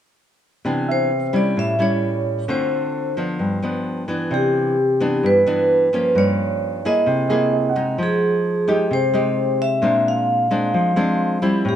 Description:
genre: bossa nova.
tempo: 131 BPM.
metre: 4/4.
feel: straight.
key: unclear.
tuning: A4 = 445 Hz.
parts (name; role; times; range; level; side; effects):
nylon-string guitar; accompaniment; 0.6-11.8 s; G2 to Ab4; -20 LUFS; equal; none.
vibraphone with medium hard mallets; melody; 0.9-11.8 s; G4 to F5; -19 LUFS; equal; none.
warm grand piano; accompaniment; 0.9-8.3 s; G#4 to F#5; -28 LUFS; right 9 dB; none.
room: light reverb.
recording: band playing live in one room.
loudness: -17 LUFS.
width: side -10 dB against mid.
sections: 0.6-4.3 A section; 4.3-11.8 B section.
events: none.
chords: 0.6 Cmaj9; 1.6 A7; 2.5 Dm7; 3.4 G7; 4.3 Cmaj9; 6.2 Gm7b5; 7.1 C7alt; 8.0 Fm9; 9.8 Bb9.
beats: | 0.64 1.10 1.56 2.02 | 2.48 2.94 3.40 3.86 | 4.32 4.77 5.23 5.69 | 6.15 6.61 7.07 7.53 | 7.99 8.44 8.90 9.36 | 9.82 10.28 10.74 11.20 | 11.65.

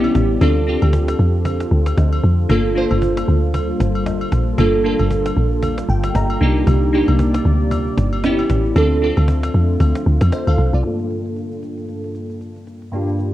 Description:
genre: amapiano.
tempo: 115 BPM.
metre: 4/4.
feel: swing 58% on 16ths.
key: G minor.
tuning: A4 = 439 Hz.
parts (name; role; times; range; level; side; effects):
glassy digital keys; accompaniment; 0.0-13.3 s; G2 to Bb5; -20 LUFS; equal; chorus, low-pass filter, cassette tape.
deep dark ambient pad; sustained chords; 0.0-10.8 s; Bb2 to D5; -26 LUFS; equal; chorus, built-in reverb, cassette tape.
deep log drum bass; bass; 0.0-10.8 s; G1 to F2; -16 LUFS; equal; none.
cajon; drums; 0.0-13.3 s; none; -28 LUFS; equal; cassette tape.
agogo bells and woodblock; percussion; 0.0-10.6 s; none; -31 LUFS; left 3 dB; none.
room: light reverb, small room ambience.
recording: home recording on cassette.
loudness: -14 LUFS.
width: side -14 dB against mid.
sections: 0.0-10.8 A section; 10.8-13.3 B section.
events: drop 0.0-10.8; synth keys fill 5.6-6.7.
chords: 0.4 Dm7; 2.5 Gm9; 6.4 Cm9; 8.2 A7; 8.8 Dm7; 10.8 Gm9.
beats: | 0.41 0.93 1.45 1.98 | 2.50 3.02 3.54 4.06 | 4.58 5.11 5.63 6.15 | 6.67 7.19 7.71 8.24 | 8.76 9.28 9.80 10.32 | 10.85 11.37 11.89 12.41 | 12.93.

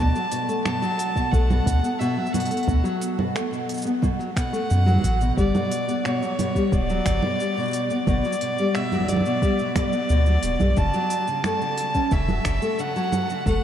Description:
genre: folktronica.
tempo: 89 BPM.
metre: 4/4.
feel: straight.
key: D major.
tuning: A4 = 440 Hz.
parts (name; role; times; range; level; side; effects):
warm violin; melody; 0.0-13.6 s; C#5 to A5; -27 LUFS; equal; tape echo.
nylon-string guitar; arpeggios; 0.0-13.6 s; B2 to C#4; -25 LUFS; left 1 dB; tape echo.
warm sub bass; bass; 0.0-13.6 s; D1 to F#2; -21 LUFS; equal; none.
organic electronic drum kit; drums; 0.2-13.6 s; cabasa, congas, finger snaps, hi-hat; -30 LUFS; right 3 dB; none.
electronic kick drum; drums; 1.2-13.6 s; none; -24 LUFS; equal; none.
room: moderate huge ambient reverb, RT60 7.9 s.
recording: dreamy mix soaked in reverb.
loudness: -20 LUFS.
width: side -10 dB against mid.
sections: 0.0-13.6 A section.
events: none.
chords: 0.0 D6 (rootless); 5.4 Gmaj7; 10.8 F#m7.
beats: 0.66 1.33 2.01 | 2.68 3.35 4.03 4.70 | 5.38 6.05 6.72 7.40 | 8.07 8.75 9.42 10.10 | 10.77 11.45 12.12 12.79 | 13.47.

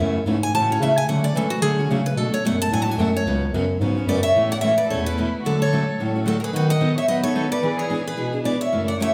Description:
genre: acoustic string swing (jazz manouche).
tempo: 220 BPM.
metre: 4/4.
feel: swing 57% on 8ths.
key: A major from 4.3 s.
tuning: A4 = 440 Hz.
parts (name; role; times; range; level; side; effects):
picked steel-string acoustic guitar; melody; 0.0-9.1 s; E4 to A5; -26 LUFS; equal; none.
picked steel-string acoustic guitar; accompaniment; 0.0-9.1 s; B2 to A4; -26 LUFS; equal; none.
mellow bass clarinet; bass; 0.0-9.1 s; C#2 to B3; -26 LUFS; equal; none.
warm violin; second line; 4.1-9.1 s; E4 to D#5; -32 LUFS; equal; none.
room: wet recital hall reverb, RT60 1.4 s.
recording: recorded in a church or concert hall.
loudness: -21 LUFS.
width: mono.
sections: 0.0-4.3 A section; 4.3-9.1 B section.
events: steel-string acoustic guitar solo 0.0-4.3.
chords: 0.0 F#m7; 1.1 Dmaj7; 2.2 Bm7; 3.3 C#7sus4; 4.3 Aadd9; 5.4 Dmaj7; 6.5 B7/D#; 7.6 E7.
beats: 0.26 0.54 0.81 | 1.08 1.35 1.63 1.90 | 2.17 2.44 2.71 2.99 | 3.26 3.53 3.80 4.08 | 4.35 4.62 4.89 5.17 | 5.44 5.71 5.99 6.26 | 6.54 6.81 7.08 7.36 | 7.63 7.90 8.18 8.45 | 8.72 9.00.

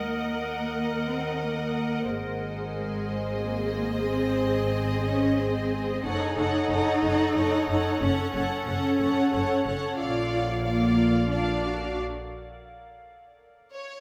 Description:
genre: cinematic, suspense film score.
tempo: 91 BPM.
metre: 3/4.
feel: straight.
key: unclear.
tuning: A4 = 439 Hz.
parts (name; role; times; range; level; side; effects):
rich studio violin section; melody; 0.0-14.0 s; Db5 to Gb5; -38 LUFS; equal; none.
warm studio violin section; second line; 0.0-12.0 s; C5 to Eb5; -37 LUFS; equal; none.
warm studio viola section; accompaniment; 0.0-12.0 s; F4 to Bb4; -35 LUFS; equal; none.
icy glass pad; sustained chords; 0.0-12.0 s; Ab4 to Ab5; -39 LUFS; equal; chorus, built-in reverb.
rich studio double bass section; bass; 0.0-12.0 s; Gb1 to Eb2; -34 LUFS; equal; none.
warm studio cello section; bass; 0.0-12.0 s; Ab3 to Eb4; -30 LUFS; equal; none.
room: moderate scoring stage reverb, RT60 1.6 s.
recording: none.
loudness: -26 LUFS.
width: mono.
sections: 0.0-14.0 A section.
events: break 12.0-14.0.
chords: 0.0 Ebm; 2.1 Ab; 6.0 Gbm; 10.0 Bb; 12.0 N.C..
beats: | 0.09 0.76 1.43 | 2.09 2.75 3.41 | 4.07 4.73 5.38 | 6.04 6.70 7.36 | 8.01 8.67 9.33 | 9.99 10.65 11.31 | 12.00 12.69 13.37.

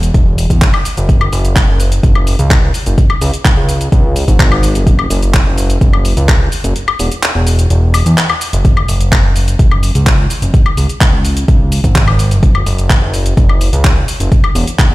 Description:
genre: progressive house.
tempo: 127 BPM.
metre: 4/4.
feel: straight.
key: unclear.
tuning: A4 = 438 Hz.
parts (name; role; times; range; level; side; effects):
fat analog bass; bass; 0.0-14.9 s; E1 to E2; -12 LUFS; equal; sidechain pumping.
deep house drum kit; drums; 0.0-14.9 s; handclaps, hi-hat, shaker, woodblock; -17 LUFS; left 1 dB; overdrive.
electronic kick drum; drums; 0.1-14.9 s; none; -10 LUFS; equal; none.
room: little or no reverb.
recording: played on a big sound system in a bare room, large studio reverb.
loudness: -9 LUFS.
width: side -18 dB against mid.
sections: 0.0-14.9 A section.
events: kick drops out 6.8-8.6.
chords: none.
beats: 0.14 0.62 | 1.09 1.56 2.03 2.51 | 2.98 3.45 3.92 4.40 | 4.87 5.34 5.81 6.29 | 6.76 7.23 7.70 8.18 | 8.65 9.12 9.59 10.06 | 10.54 11.01 11.48 11.96 | 12.43 12.90 13.37 13.84 | 14.32 14.79.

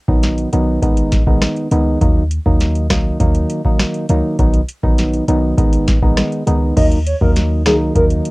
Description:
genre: dancehall.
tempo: 101 BPM.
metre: 4/4.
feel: straight.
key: unclear.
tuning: A4 = 439 Hz.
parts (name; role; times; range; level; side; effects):
percussive organ stab; accompaniment; 0.1-8.3 s; D#3 to D#4; -17 LUFS; equal; chorus, sidechain pumping, cassette tape.
warm 808-style bass; bass; 0.1-8.2 s; G#1 to D#2; -18 LUFS; equal; none.
booming analog drum machine; drums; 0.1-8.3 s; crash cymbal, hi-hat, kick drum, rim click, snare drum; -15 LUFS; equal; cassette tape.
hollow clarinet-like synth lead; melody; 6.8-8.1 s; G#4 to D#5; -18 LUFS; equal; chorus, cassette tape.
room: little or no reverb.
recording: home recording on cassette.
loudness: -13 LUFS.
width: side -23 dB against mid.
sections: 0.0-6.8 A section; 6.8-8.3 B section.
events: none.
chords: 0.0 B; 0.8 G#m; 2.0 D#m; 4.4 B; 5.6 G#m; 6.8 D#m.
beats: 0.23 0.83 1.42 | 2.02 2.61 3.20 3.80 | 4.39 4.99 5.58 6.17 | 6.77 7.36 7.96.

